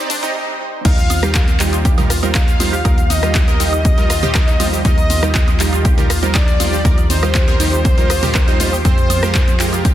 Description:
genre	progressive house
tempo	120 BPM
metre	4/4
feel	straight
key	Eb major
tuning	A4 = 443 Hz
part	soft octave-layered synth lead	melody	0.0-9.5 s	C5 to F5	-25 LUFS	left 2 dB	chorus, tape echo
part	shimmering ambient pad	sustained chords	0.0-9.9 s	C3 to C5	-28 LUFS	equal	chorus, built-in reverb, sidechain pumping
part	supersaw stab	stabs	0.0-9.9 s	G3 to Eb5	-23 LUFS	right 4 dB	sidechain pumping, tape echo
part	wide unison pluck	arpeggios	0.1-9.9 s	C4 to Bb4	-25 LUFS	equal	phaser, sidechain pumping, tape echo
part	house drum kit	drums	0.1-9.9 s	crash cymbal, handclaps, hi-hat, rim click, shaker	-21 LUFS	left 2 dB	studio reverb
part	soft supersaw	second line	0.8-9.5 s	C5 to F5	-26 LUFS	equal	sidechain pumping, tape echo
part	plucky analog bass	bass	0.8-9.9 s	Eb2 to F2	-20 LUFS	equal	tube saturation, sidechain pumping
part	electronic kick drum	drums	0.8-9.9 s	none	-15 LUFS	equal	studio reverb
part	electronic woodblock, congas and toms	percussion	0.8-9.9 s	none	-27 LUFS	right 5 dB	sidechain pumping on perc, studio reverb, sidechain pumping on toms
room	light reverb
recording	dense, heavily limited modern master, high-pass filter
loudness	-12 LUFS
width	side -12 dB against mid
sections	0.8-9.9 A section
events	break 0.3-0.8; drop 0.8-9.9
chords	0.0 Cmadd9; 0.8 Ebadd9; 8.8 Fmadd9

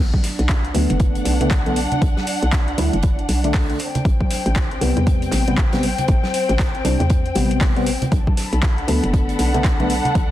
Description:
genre	deep house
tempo	118 BPM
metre	4/4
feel	swing 60% on 16ths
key	unclear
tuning	A4 = 441 Hz
part	hollow knocking FM bass	bass	0.0-10.3 s	F#1 to E2	-22 LUFS	equal	sidechain pumping
part	dark studio string section	texture	0.0-10.3 s	C4 to B5	-25 LUFS	left 2 dB	sidechain pumping
part	electronic kick drum	drums	0.1-10.3 s	none	-18 LUFS	equal	overdrive
part	congas	percussion	0.1-10.1 s	none	-28 LUFS	right 2 dB	sidechain pumping on perc
part	deep house drum kit	drums	0.2-10.3 s	handclaps, hi-hat	-27 LUFS	equal	overdrive
part	loose indie drum kit	drums	0.2-10.3 s	hi-hat, snare drum	-36 LUFS	right 2 dB	sidechain pumping on hats, high-pass filter on hats, high-pass filter on snare, high-pass filter on room
part	percussive organ stab	stabs	0.7-9.9 s	C3 to E4	-23 LUFS	left 1 dB	wide subtle chorus, sidechain pumping, tape echo
room	light reverb, studio reverb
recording	dense, heavily limited modern master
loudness	-16 LUFS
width	side -13 dB against mid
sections	0.0-10.3 A section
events	none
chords	0.0 Bm7; 3.8 Am9; 8.1 Bm7

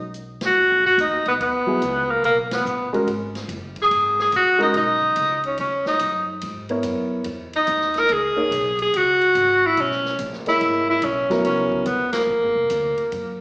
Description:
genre	modal jazz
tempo	143 BPM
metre	4/4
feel	swing 66% on 8ths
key	G# minor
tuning	A4 = 440 Hz
part	clear tenor saxophone	melody	0.0-13.4 s	A#3 to A#4	-18 LUFS	equal	slapback echo
part	upright bass	bass	0.0-13.4 s	E#1 to G#2	-35 LUFS	equal	none
part	swinging big-band drum kit	drums	0.1-13.2 s	hi-hat, kick drum, ride cymbal, snare drum	-36 LUFS	equal	none
part	dark baby grand piano	accompaniment	1.7-11.8 s	F#3 to D#5	-23 LUFS	equal	slapback echo
room	moderate club reverb, RT60 0.7 s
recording	live gig heard through the venue's PA, recital hall reverb, small speaker sound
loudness	-18 LUFS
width	side -27 dB against mid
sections	0.6-13.4 A section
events	band accent 0.3, 2.4, 12.1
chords	0.0 Abm7 (rootless); 0.6 G#m9; 7.3 C#m9; 12.3 A#7b13

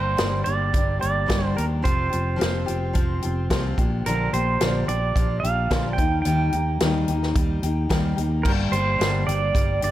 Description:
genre	folk rock and heartland rock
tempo	109 BPM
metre	4/4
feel	straight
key	G minor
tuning	A4 = 440 Hz
part	pedal steel guitar	melody	0.0-9.9 s	Bb4 to G5	-26 LUFS	right 4 dB	none
part	picked steel-string acoustic guitar	accompaniment	0.0-9.9 s	G2 to G4	-27 LUFS	left 2 dB	none
part	fingered electric bass	bass	0.0-9.9 s	F1 to Eb2	-25 LUFS	equal	none
part	natural country drum kit	drums	0.2-9.9 s	crash cymbal, hi-hat, kick drum, snare drum	-25 LUFS	equal	none
room	light reverb, studio reverb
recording	none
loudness	-20 LUFS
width	side -13 dB against mid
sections	0.0-8.5 A section; 8.5-9.9 A section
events	none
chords	0.0 Gm; 1.8 Fsus2; 3.8 Bb6; 6.0 Eb; 8.5 Gm

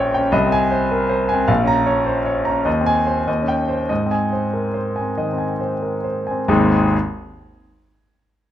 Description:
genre	classical, virtuoso piano study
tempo	91-105 BPM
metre	4/4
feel	rubato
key	Ab major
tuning	A4 = 440 Hz
part	clear grand piano	solo	0.0-7.0 s	Ab1 to Bb5	-16 LUFS	equal	none
room	moderate large studio reverb, RT60 1.4 s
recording	close, detailed microphones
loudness	-17 LUFS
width	side -11 dB against mid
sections	0.0-6.5 A section; 6.5-8.5 B section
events	slowing down 0.3-6.5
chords	0.3 Ab/C; 1.5 Bbm; 2.7 Ab/Eb; 3.3 Eb6; 3.9 Ab

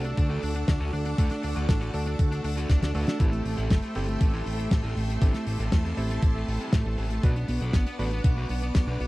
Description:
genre	italo disco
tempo	119 BPM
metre	4/4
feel	straight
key	unclear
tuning	A4 = 438 Hz
part	fuzz lead guitar	melody	0.0-9.1 s	A3 to B4	-34 LUFS	equal	distortion, tape echo
part	string machine, full ensemble	sustained chords	0.0-9.1 s	A4 to D6	-37 LUFS	equal	ensemble chorus
part	clear electric grand piano	stabs	0.0-9.1 s	A3 to B4	-35 LUFS	right 1 dB	none
part	fat analog bass	bass	0.0-9.1 s	D1 to E2	-29 LUFS	equal	none
part	damped 70s drum kit	drums	0.0-9.1 s	hi-hat, snare drum	-31 LUFS	left 1 dB	small room ambience
part	electronic kick drum	drums	0.2-8.8 s	none	-23 LUFS	equal	overdrive, small room ambience
room	little or no reverb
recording	dry, close 1970s-style studio recording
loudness	-24 LUFS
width	side -19 dB against mid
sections	0.0-9.1 A section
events	drum fill 2.7-3.2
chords	0.0 D; 3.2 Am7; 7.2 Bm

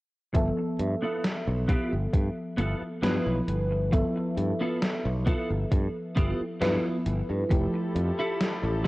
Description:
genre	vaporwave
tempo	67 BPM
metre	4/4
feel	straight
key	unclear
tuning	A4 = 442 Hz
part	mellow FM electric piano	accompaniment	0.3-8.9 s	F3 to E5	-30 LUFS	equal	analog chorus, analog delay
part	clean electric guitar	riff	0.3-8.9 s	B3 to B4	-34 LUFS	right 1 dB	ensemble chorus, vintage 12-bit sampler grit, low-pass filter, analog delay
part	modern bright fingered electric bass	bass	0.3-8.9 s	F1 to G2	-28 LUFS	equal	none
part	electronic kick drum	drums	0.3-8.9 s	none	-25 LUFS	equal	overdrive, vintage 12-bit sampler grit
part	gated 80s digital drum machine	drums	0.3-8.6 s	hi-hat, snare drum	-32 LUFS	equal	gated reverb, gated reverb snare, overdrive, vintage 12-bit sampler grit
part	warm chamber string section	sustained chords	7.5-8.9 s	F3 to A4	-34 LUFS	left 1 dB	none
room	light reverb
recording	worn, warbling old tape, cassette tape, warbly pitch drift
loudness	-25 LUFS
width	side -20 dB against mid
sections	0.3-8.9 A section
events	none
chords	0.3 G13; 7.5 Fmaj9

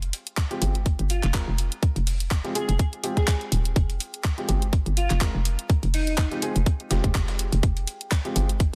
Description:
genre	bass house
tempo	124 BPM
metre	4/4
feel	swing 55% on 16ths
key	F minor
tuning	A4 = 440 Hz
part	hollow knocking FM bass	bass	0.0-8.7 s	Eb1 to G1	-27 LUFS	equal	overdrive, sidechain pumping
part	dusty soul sampler-style drum kit	drums	0.0-8.7 s	hi-hat, snare drum	-44 LUFS	equal	none
part	garage drum kit	drums	0.0-8.7 s	handclaps, hi-hat	-33 LUFS	equal	overdrive
part	electronic kick drum	drums	0.4-8.7 s	none	-24 LUFS	equal	overdrive
part	dark baby grand piano	stabs	0.5-8.5 s	Ab3 to Bb4	-36 LUFS	equal	sidechain pumping, delay
part	airy dreamy lead	melody	1.1-6.4 s	Eb4 to Ab4	-35 LUFS	equal	chorus, delay
room	little or no reverb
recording	dense, heavily limited modern master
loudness	-25 LUFS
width	mono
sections	0.0-8.8 A section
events	none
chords	0.0 Fmadd9

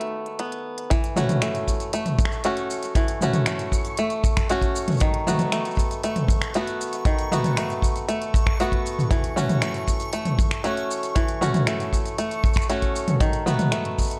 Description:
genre	folktronica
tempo	117 BPM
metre	4/4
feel	straight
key	F# dorian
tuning	A4 = 438 Hz
part	warbly tape-like pad	sustained chords	0.0-0.9 s	A3 to B4	-51 LUFS	equal	none
part	bluegrass banjo	arpeggios	0.0-14.2 s	D#3 to F#4	-28 LUFS	equal	delay
part	organic electronic drum kit	drums	0.0-14.2 s	finger snaps, hi-hat, shaker, toms	-28 LUFS	equal	none
part	kick drum	drums	0.9-14.1 s	none	-25 LUFS	equal	none
part	backwards swelling texture	texture	2.0-14.2 s	C#6	-40 LUFS	equal	built-in reverb
room	light reverb, small room ambience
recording	dark, warm production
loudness	-23 LUFS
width	mono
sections	0.9-14.2 A section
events	none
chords	0.0 B7; 0.9 F#m7; 5.0 B7; 9.1 F#m7; 13.2 B7

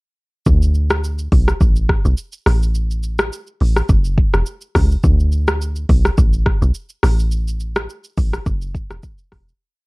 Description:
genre	afrobeats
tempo	105 BPM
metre	4/4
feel	swing 55% on 16ths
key	unclear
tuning	A4 = 441 Hz
part	deep log drum bass	bass	0.5-9.5 s	E1 to D2	-16 LUFS	equal	none
part	afro-pop drum kit	drums	0.5-9.6 s	hi-hat, kick drum, rim click, shaker	-16 LUFS	equal	none
room	little or no reverb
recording	cassette tape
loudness	-15 LUFS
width	side -26 dB against mid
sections	0.5-9.6 chorus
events	fade-out 7.3-9.6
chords	none

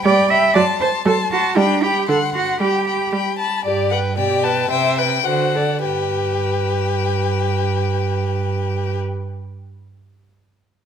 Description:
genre	quick classical-period movement for string quartet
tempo	101-119 BPM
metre	2/4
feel	straight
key	G major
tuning	A4 = 440 Hz
part	dark violin	melody	0.0-9.0 s	D5 to C6	-24 LUFS	left 11 dB	none
part	warm violin	second line	0.0-9.0 s	B4 to A5	-23 LUFS	left 5 dB	none
part	clear viola	accompaniment	0.0-9.0 s	D3 to C5	-22 LUFS	right 2 dB	none
part	warm cello	bass	0.0-9.0 s	G2 to E5	-20 LUFS	right 4 dB	none
room	moderate recital hall reverb, RT60 1.5 s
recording	none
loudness	-16 LUFS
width	side -8 dB against mid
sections	0.0-3.6 A section; 3.6-5.8 B section; 5.8-8.2 C section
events	slowing down 3.1-5.8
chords	0.0 G; 0.6 D7/F# (rootless); 1.6 G; 2.1 D7; 2.6 G; 4.2 G/B; 4.7 Cmaj7; 5.3 D7; 5.8 G

